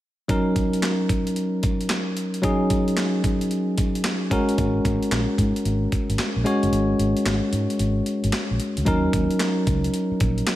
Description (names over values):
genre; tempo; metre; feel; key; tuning
R&B, new jack swing; 112 BPM; 4/4; swing 65% on 16ths; Eb minor; A4 = 440 Hz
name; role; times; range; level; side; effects
barky tine electric piano; accompaniment; 0.3-10.6 s; Gb3 to Db5; -22 LUFS; equal; none
breakbeat sampler-style drum kit; drums; 0.3-10.6 s; handclaps, hi-hat, kick drum, snare drum; -26 LUFS; equal; overdrive
vintage muted fingered electric bass; bass; 4.6-10.4 s; G1 to Ab2; -24 LUFS; equal; none
room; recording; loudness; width
digital ambience; none; -20 LUFS; side -14 dB against mid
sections
0.3-8.9 A section; 8.9-10.6 B section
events
kick muted 6.7-8.9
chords
0.3 Ebm7; 4.3 Ab9sus4; 8.9 Ebm7